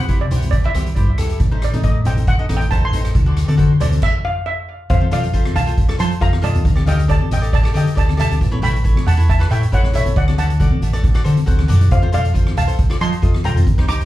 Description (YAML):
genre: calypso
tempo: 137 BPM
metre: 4/4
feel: straight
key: unclear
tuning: A4 = 441 Hz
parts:
  - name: steel pan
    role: melody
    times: 0.0-14.1 s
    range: C5 to D6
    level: -24 LUFS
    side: right 1 dB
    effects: slapback echo, tape echo
  - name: cavaquinho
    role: accompaniment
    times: 0.0-14.0 s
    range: Eb4 to F#5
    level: -28 LUFS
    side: left 3 dB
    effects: slapback echo
  - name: fingered electric bass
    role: bass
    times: 0.0-14.1 s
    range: A1 to F3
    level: -17 LUFS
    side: equal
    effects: none
  - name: street-band drum kit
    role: drums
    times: 0.1-14.1 s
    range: crash cymbal, hi-hat, kick drum, rim click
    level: -18 LUFS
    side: equal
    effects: none
  - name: congas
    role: percussion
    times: 0.3-14.0 s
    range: none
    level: -24 LUFS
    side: equal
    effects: slapback echo
room: little or no reverb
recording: live gig heard through the venue's PA, club reverb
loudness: -14 LUFS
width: side -15 dB against mid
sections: 0.0-4.9 A section; 4.9-14.1 B section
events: steel pan solo 0.0-4.9; stop 4.0-4.9; cavaquinho fill 11.3-11.9; drum fill 11.4-11.9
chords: 0.0 C; 1.4 Adim; 3.1 D; 4.0 N.C.; 4.9 F7; 6.7 Dsus4; 8.4 A7; 10.2 D7; 11.9 F7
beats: 0.09 0.53 0.96 | 1.40 1.84 2.27 2.71 | 3.15 3.59 4.03 4.46 | 4.90 5.34 5.78 6.22 | 6.65 7.09 7.53 7.97 | 8.41 8.85 9.29 9.72 | 10.16 10.60 11.04 11.48 | 11.91 12.35 12.79 13.23 | 13.67